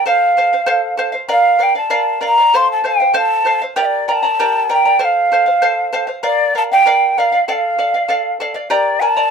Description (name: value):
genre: andean folk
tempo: 97 BPM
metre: 2/4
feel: straight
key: unclear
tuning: A4 = 440 Hz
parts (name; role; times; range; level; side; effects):
- breathy mellow quena; melody; 0.0-9.3 s; D5 to C6; -13 LUFS; equal; none
- charango; accompaniment; 0.0-9.3 s; G4 to Bb5; -18 LUFS; right 1 dB; none
room: light reverb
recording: close, detailed microphones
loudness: -12 LUFS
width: side -6 dB against mid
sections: 0.0-8.7 A section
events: none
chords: 0.1 F; 1.3 Bb; 2.5 F; 3.8 Gm; 5.0 F; 6.2 Bb; 7.5 Dm; 8.7 Gm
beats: | 0.06 0.69 | 1.30 1.93 | 2.54 3.16 | 3.78 4.40 | 5.02 5.63 | 6.25 6.86 | 7.48 8.09 | 8.71